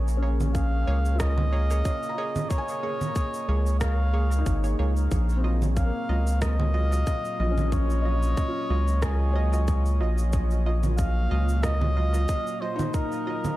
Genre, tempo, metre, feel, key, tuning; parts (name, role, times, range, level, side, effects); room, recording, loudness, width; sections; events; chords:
ambient dub; 92 BPM; 4/4; swing 55% on 16ths; A4 = 440 Hz
warbly tape-like pad; sustained chords; 0.0-13.6 s; Bb2 to Eb5; -36 LUFS; right 2 dB; chorus, built-in reverb
felt-muted upright piano; arpeggios; 0.0-13.6 s; Bb3 to Bb5; -36 LUFS; left 3 dB; dub echo
round analog bass; bass; 0.0-12.3 s; Ab1 to Db2; -23 LUFS; equal
electronic shaker, congas and rim click; drums; 0.1-13.6 s; -34 LUFS; right 2 dB; dub echo
filtered dub chord stab; stabs; 0.2-13.5 s; Gb3 to Eb5; -36 LUFS; right 3 dB; chorus, dub echo
trumpet with cup mute; melody; 0.5-13.6 s; Ab4 to F5; -32 LUFS; equal; dub echo
electronic kick drum; drums; 0.5-13.1 s; -28 LUFS; equal
digital ambience; echo-heavy mix; -22 LUFS; side -16 dB against mid
0.0-13.6 A section
0.0 Bbm7; 5.1 Ebmadd9/Bb